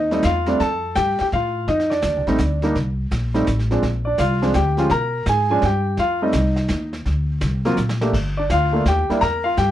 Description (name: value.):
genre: jazz piano trio.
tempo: 167 BPM.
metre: 3/4.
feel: swing 65% on 8ths.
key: F mixolydian.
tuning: A4 = 440 Hz.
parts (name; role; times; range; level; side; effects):
warm grand piano; melody; 0.0-9.7 s; F3 to Bb5; -19 LUFS; equal; none.
upright bass; bass; 0.0-9.7 s; G1 to B2; -22 LUFS; equal; none.
vintage brush drum kit; drums; 0.1-9.7 s; brushed snare drum, crash cymbal, hi-hat, kick drum, snare drum; -30 LUFS; right 1 dB; none.
room: light reverb.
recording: dark, warm production.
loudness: -17 LUFS.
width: side -12 dB against mid.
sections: 0.0-9.7 A section.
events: drum fill 7.8-8.1.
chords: 0.0 F9; 2.8 C7(no3); 3.5 F; 3.8 Bb9; 4.9 B5; 6.0 F7(no3); 7.1 D7(#5, no3); 8.1 Gm7.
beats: 0.24 | 0.60 0.96 1.32 | 1.68 2.04 2.40 | 2.75 3.11 3.47 | 3.83 4.19 4.55 | 4.91 5.27 5.63 | 5.99 6.34 6.70 | 7.06 7.42 7.78 | 8.14 8.50 8.86 | 9.21 9.57.